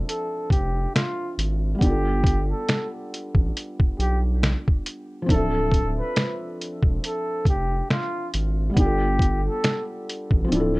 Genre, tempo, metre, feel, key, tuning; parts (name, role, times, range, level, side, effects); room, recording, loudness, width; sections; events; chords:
lo-fi hip hop; 69 BPM; 4/4; swing 57% on 16ths; A4 = 440 Hz
felt-muted upright piano; accompaniment; 0.0-10.8 s; F3 to E5; -29 LUFS; equal; cassette tape, low-pass filter
saturated sub bass; bass; 0.0-10.8 s; D1 to B1; -24 LUFS; equal
breathy flugelhorn; melody; 0.1-9.9 s; F4 to B4; -28 LUFS; equal; low-pass filter
lo-fi sampler-style drum kit; drums; 0.1-10.7 s; finger snaps, hi-hat, kick drum, snare drum; -21 LUFS; equal
light reverb; cassette tape; -21 LUFS; side -22 dB against mid
0.0-10.8 A section
kick muted 10.5
0.0 Dm9; 1.8 G9; 5.3 Dm9; 8.8 G9